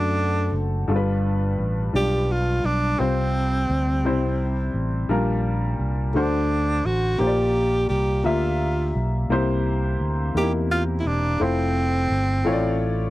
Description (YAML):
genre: slow gospel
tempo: 57 BPM (dotted quarters)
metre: 6/8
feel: straight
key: unclear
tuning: A4 = 440 Hz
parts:
  - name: breathy tenor saxophone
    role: melody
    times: 0.0-13.1 s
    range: C4 to G4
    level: -24 LUFS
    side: right 1 dB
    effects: none
  - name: warm upright piano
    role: accompaniment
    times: 0.0-13.1 s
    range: G2 to F#5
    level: -25 LUFS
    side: left 2 dB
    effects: none
  - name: fingered electric bass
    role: bass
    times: 0.0-13.1 s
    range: E1 to F#2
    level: -24 LUFS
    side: equal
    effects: none
room: little or no reverb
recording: dry, close 1970s-style studio recording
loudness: -20 LUFS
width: side -16 dB against mid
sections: 0.0-13.1 A section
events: none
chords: 0.0 D7; 0.9 G7; 3.0 Csus4; 4.0 C; 5.1 Bb6; 6.1 D7; 7.2 Gm7/Bb; 9.3 C7; 11.4 Fmaj7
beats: | 0.89 1.94 | 2.99 4.04 | 5.09 6.15 | 7.20 8.25 | 9.30 10.35 | 11.40 12.46